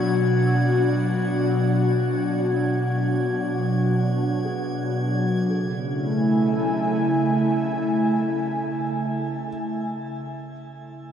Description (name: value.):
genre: ambient.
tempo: free time.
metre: none.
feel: none.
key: A major.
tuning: A4 = 438 Hz.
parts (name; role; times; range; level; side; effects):
airy breathy pad; sustained chords; 0.0-10.0 s; B2 to G#5; -21 LUFS; equal; chorus, shimmer reverb.
felt-muted upright piano; arpeggios; 0.0-11.1 s; F#3 to E6; -43 LUFS; left 1 dB; none.
drifting glass-harmonics texture; texture; 0.0-5.5 s; G#6; -36 LUFS; equal; chorus, built-in reverb, shimmer reverb.
room: wet cathedral reverb, RT60 5.6 s.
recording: dark, warm production.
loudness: -20 LUFS.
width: side -8 dB against mid.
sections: 0.0-5.5 A section; 5.5-9.6 B section.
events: none.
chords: 0.0 Eadd9; 5.5 Amaj7.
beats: free time.